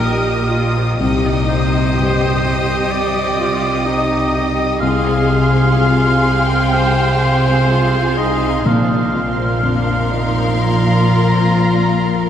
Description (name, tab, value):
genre	cinematic, emotional film score for orchestra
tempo	63 BPM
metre	4/4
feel	rubato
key	F minor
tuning	A4 = 440 Hz
part	warm studio violin section	melody	0.0-12.3 s	C6 to Eb6	-24 LUFS	left 3 dB	none
part	bright oboe	second line	0.0-12.3 s	Bb4 to Bb5	-21 LUFS	right 1 dB	none
part	clear symphonic violin section	second line	0.0-12.3 s	G4 to F5	-23 LUFS	left 2 dB	none
part	felt-muted upright piano	accompaniment	0.0-12.3 s	Bb1 to C3	-22 LUFS	left 1 dB	none
part	warm studio viola section	accompaniment	0.0-12.3 s	C4 to G5	-23 LUFS	right 1 dB	none
part	concert harp	arpeggios	0.0-12.3 s	Bb2 to G5	-21 LUFS	left 4 dB	none
part	rich studio cello section	bass	0.0-12.3 s	Bb2 to C3	-21 LUFS	right 2 dB	none
part	rich studio double bass section	bass	0.0-12.3 s	Bb1 to C2	-21 LUFS	right 2 dB	none
room	wet cathedral reverb, RT60 5.3 s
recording	none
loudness	-13 LUFS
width	side -9 dB against mid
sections	0.0-12.3 A section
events	none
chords	0.0 Eb/Bb; 1.0 Cm; 4.8 Fm/C; 8.7 Bbsus2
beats	0.02 | 1.00 1.98 2.92 3.87 | 4.82 5.77 6.74 7.70 | 8.66 9.62 10.62 11.58